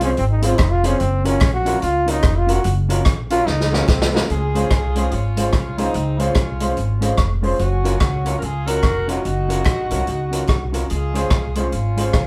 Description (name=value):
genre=ska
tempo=146 BPM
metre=4/4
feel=swing 61% on 8ths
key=Db major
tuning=A4 = 440 Hz
part: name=brilliant trombone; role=melody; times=0.0-4.1 s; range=C4 to Gb4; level=-23 LUFS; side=equal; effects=none
part: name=mellow electric guitar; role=accompaniment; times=0.0-12.1 s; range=Ab3 to Db5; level=-30 LUFS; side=equal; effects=none
part: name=dark upright piano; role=stabs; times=0.0-12.2 s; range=Db4 to C5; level=-28 LUFS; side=equal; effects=none
part: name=upright bass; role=bass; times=0.0-12.3 s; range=F1 to Db2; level=-24 LUFS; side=equal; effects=none
part: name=vintage drum kit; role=drums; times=0.0-12.3 s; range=hi-hat, kick drum, rim click, snare drum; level=-23 LUFS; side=equal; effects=none
part: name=group handclap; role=percussion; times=0.6-12.3 s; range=none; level=-39 LUFS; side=equal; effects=none
part: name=mellow horn section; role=melody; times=4.3-12.3 s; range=C4 to Bb4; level=-27 LUFS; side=equal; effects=none
room=moderate studio ambience, RT60 0.5 s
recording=band playing live in one room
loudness=-19 LUFS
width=mono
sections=0.0-4.3 A section; 4.3-12.3 B section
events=trombone solo 0.0-4.3; drum fill 3.5-4.3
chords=0.0 Dbmaj7; 1.0 Gbmaj7; 4.3 Dbmaj7; 7.6 Gbmaj7; 10.9 Dbmaj7